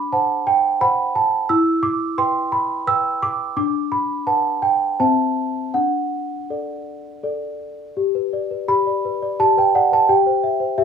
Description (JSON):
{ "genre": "classical, lullaby for celesta", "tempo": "79-88 BPM", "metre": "3/4", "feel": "rubato", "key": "G major", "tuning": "A4 = 440 Hz", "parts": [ { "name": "worn celesta", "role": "solo", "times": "0.0-10.8 s", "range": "C4 to E6", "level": "-17 LUFS", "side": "right 1 dB", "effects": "none" } ], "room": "moderate studio ambience, RT60 0.5 s", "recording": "studio ambience", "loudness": "-17 LUFS", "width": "side -6 dB against mid", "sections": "0.0-8.0 A section; 8.0-10.8 B section", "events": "none", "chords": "0.0 D7; 1.5 Em; 3.6 Bm/D; 5.0 Am/C; 5.7 D; 8.0 G; 10.1 C/G" }